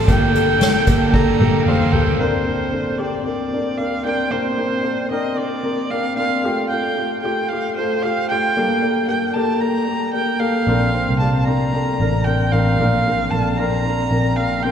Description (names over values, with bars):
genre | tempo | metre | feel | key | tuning
piano-driven pop | 113 BPM | 4/4 | swing 56% on 16ths | Bb major | A4 = 440 Hz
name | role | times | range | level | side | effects
rich erhu | melody | 0.0-14.7 s | C5 to Bb5 | -22 LUFS | right 2 dB | none
dark upright piano | accompaniment | 0.0-14.7 s | G2 to C5 | -20 LUFS | left 1 dB | none
cranked stack guitar | riff | 0.0-2.2 s | G2 to A4 | -28 LUFS | right 4 dB | overdrive
vintage muted picked electric bass | bass | 0.0-2.2, 10.7-14.7 s | G1 to C2 | -20 LUFS | equal | none
soft-mallet drum kit | drums | 0.1-2.2 s | hi-hat, kick drum, snare drum, toms | -20 LUFS | equal | none
room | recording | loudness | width
wet cathedral reverb, RT60 4.5 s | recorded in a church or concert hall | -16 LUFS | side -8 dB against mid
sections
0.0-2.2 A section; 2.2-14.7 B section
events
drum fill 1.1-2.2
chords
0.1 Gmadd9; 2.2 Bbadd9; 6.4 Fadd9; 8.6 Gmadd9; 10.7 Bbadd9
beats
| 0.08 0.61 1.14 1.67 | 2.19 2.73 3.25 3.79 | 4.32 4.85 5.38 5.91 | 6.44 6.97 7.50 8.03 | 8.55 9.09 9.61 10.14 | 10.67 11.20 11.73 12.26 | 12.79 13.32 13.85 14.38